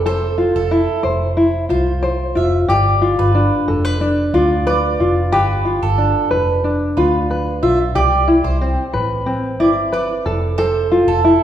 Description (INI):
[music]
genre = acoustic pop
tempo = 91 BPM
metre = 4/4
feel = straight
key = unclear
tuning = A4 = 442 Hz
[part]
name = tenor ukulele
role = accompaniment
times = 0.0-11.4 s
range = C4 to C5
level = -16 LUFS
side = left 1 dB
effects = none
[part]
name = vintage muted fingered electric bass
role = bass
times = 0.0-11.4 s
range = F1 to D2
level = -20 LUFS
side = equal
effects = none
[part]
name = mandolin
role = arpeggios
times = 0.1-11.4 s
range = A4 to E5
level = -22 LUFS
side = right 6 dB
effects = none
[sound]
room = wet recital hall reverb, RT60 1.6 s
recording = recorded in a church or concert hall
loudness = -14 LUFS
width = side -10 dB against mid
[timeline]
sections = 0.0-11.4 A section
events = none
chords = 0.0 Fmaj7; 2.7 G7; 8.0 Cmaj7; 10.3 Fmaj7